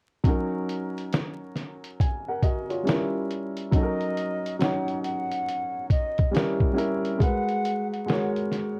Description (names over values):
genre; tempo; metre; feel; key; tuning
lo-fi hip hop; 69 BPM; 4/4; swing 63% on 16ths; F# major; A4 = 440 Hz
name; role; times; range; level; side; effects
warm upright piano; accompaniment; 0.2-8.8 s; F#3 to G#5; -30 LUFS; equal; none
lo-fi sampler-style drum kit; drums; 0.2-8.8 s; hi-hat, kick drum, snare drum; -28 LUFS; equal; vintage 12-bit sampler grit
mellow silver concert flute; melody; 3.7-8.3 s; D#5 to F#5; -33 LUFS; equal; none
room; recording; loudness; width
moderate studio reverb, RT60 0.5 s; worn, warbling old tape, cassette tape, vinyl crackle, warbly pitch drift; -27 LUFS; mono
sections
0.2-3.7 A section; 3.7-8.8 B section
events
none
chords
0.2 F#6; 2.9 Gdim7; 3.7 F#6; 6.3 Gdim7; 7.2 G#m9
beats
| 0.25 1.12 1.99 2.86 | 3.73 4.59 5.46 6.33 | 7.20 8.07